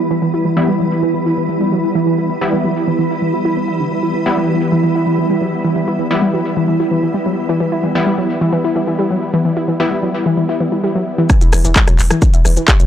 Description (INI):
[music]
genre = driving peak-time techno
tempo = 130 BPM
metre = 4/4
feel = straight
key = E minor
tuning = A4 = 440 Hz
[part]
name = supersaw stab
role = stabs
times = 0.0-11.3 s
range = G3 to E4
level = -19 LUFS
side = left 2 dB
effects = sidechain pumping, low-pass filter, tape echo
[part]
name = swarming drone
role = drone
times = 0.0-11.3 s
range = E3 to E4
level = -19 LUFS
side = right 1 dB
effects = built-in reverb, sidechain pumping
[part]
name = warbly dusty pluck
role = riff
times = 0.1-12.8 s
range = D3 to E4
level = -18 LUFS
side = equal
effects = chorus, sidechain pumping, tape echo
[part]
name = electronic kick drum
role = drums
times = 11.3-12.8 s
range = none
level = -12 LUFS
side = equal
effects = none
[part]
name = techno drum kit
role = drums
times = 11.3-12.9 s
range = handclaps, hi-hat, rim click, shaker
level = -16 LUFS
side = equal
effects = low-pass filter on snare, low-pass filter on hats, low-pass filter on perc, low-pass filter on cymbals
[part]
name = saturated sub bass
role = bass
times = 11.4-12.9 s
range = E1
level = -15 LUFS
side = equal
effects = overdrive, sidechain pumping, low-pass filter
[sound]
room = little or no reverb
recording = dry, gritty hardware recording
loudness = -13 LUFS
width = side -10 dB against mid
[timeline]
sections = 0.0-11.3 A section; 11.3-12.9 B section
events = filter sweep on synth arpeggio sound 0.0-11.3; drop 11.3-12.9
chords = 0.0 Em; 11.3 N.C.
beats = | 0.22 0.68 1.14 1.60 | 2.07 2.53 2.99 3.45 | 3.91 4.37 4.83 5.30 | 5.76 6.22 6.68 7.14 | 7.61 8.07 8.53 8.99 | 9.45 9.91 10.37 10.84 | 11.30 11.76 12.22 12.68